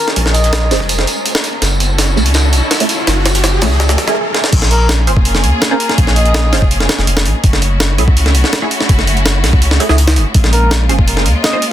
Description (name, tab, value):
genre	drum and bass, jungle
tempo	165 BPM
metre	4/4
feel	straight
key	unclear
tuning	A4 = 440 Hz
part	trumpet with bucket mute	melody	0.0-0.9, 4.7-6.7, 10.5-11.7 s	Bb4 to Eb5	-21 LUFS	left 1 dB	dub echo
part	clear symphonic string section	sustained chords	0.0-11.7 s	Ab3 to Bb4	-20 LUFS	left 1 dB	low-pass filter
part	riser	sound effects	0.6-4.2 s	none	-22 LUFS	right 1 dB	none
part	crunchy breakbeat drum kit	drums	0.1-4.1 s	hi-hat, snare drum, tambourine	-23 LUFS	right 1 dB	high-pass filter on hats, high-pass filter on snare, high-pass filter on perc, high-pass filter on room
part	jungle sampler-style drum kit	drums	0.1-11.7 s	crash cymbal, hi-hat, kick drum, snare drum	-14 LUFS	equal	high-pass filter on kick, high-pass filter on hats, high-pass filter on snare, high-pass filter on cymbals, high-pass filter on room
part	saturated sub bass	bass	0.2-11.3 s	F1 to Eb2	-13 LUFS	equal	none
part	filtered dub chord stab	stabs	0.7-11.6 s	A3 to C5	-21 LUFS	right 3 dB	phaser, lush chorus, dub echo
room	light reverb, small room ambience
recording	dense, heavily limited modern master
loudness	-10 LUFS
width	side -12 dB against mid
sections	0.0-4.5 A section; 4.5-11.7 B section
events	build-up 0.0-4.5; filter sweep on synth stab 0.0-4.5; riser 0.6-4.2; drum fill 1.6-4.2, 4.3; stop 4.2-4.5; drop 4.5-11.7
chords	0.0 Bbm7; 1.6 Gbm7; 4.5 Bbm7; 7.4 Gbm7; 10.3 Bbm7